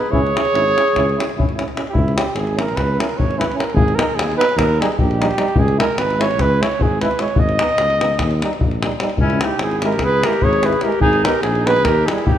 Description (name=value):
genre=balkan folk, Balkan brass band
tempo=297 BPM (eighths)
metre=9/8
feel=straight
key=C# dorian sharp4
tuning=A4 = 440 Hz
part: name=mellow flugelhorn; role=melody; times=0.0-12.4 s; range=E4 to D#5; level=-19 LUFS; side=right 3 dB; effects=none
part: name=mellow clarinet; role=second line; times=0.0-1.6, 9.2-12.4 s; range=C#4 to G#4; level=-21 LUFS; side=left 4 dB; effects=none
part: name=clear euphonium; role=accompaniment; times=0.1-12.2 s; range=G3 to C#4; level=-27 LUFS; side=right 4 dB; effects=none
part: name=clear trombone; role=accompaniment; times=0.1-12.2 s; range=D#4 to E4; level=-27 LUFS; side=left 4 dB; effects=none
part: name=dark tuba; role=bass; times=0.1-12.4 s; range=G#1 to D#2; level=-22 LUFS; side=equal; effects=none
part: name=davul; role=percussion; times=0.1-12.4 s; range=none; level=-20 LUFS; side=left 2 dB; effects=none
room=moderate scoring stage reverb, RT60 1.7 s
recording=none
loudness=-15 LUFS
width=side -10 dB against mid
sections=0.0-1.9 A section; 1.9-12.4 B section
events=none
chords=0.1 C#m; 3.8 G#m; 4.6 D#; 5.6 C#m; 7.4 G#m; 8.2 D#; 9.2 C#m; 11.0 G#m; 11.8 D#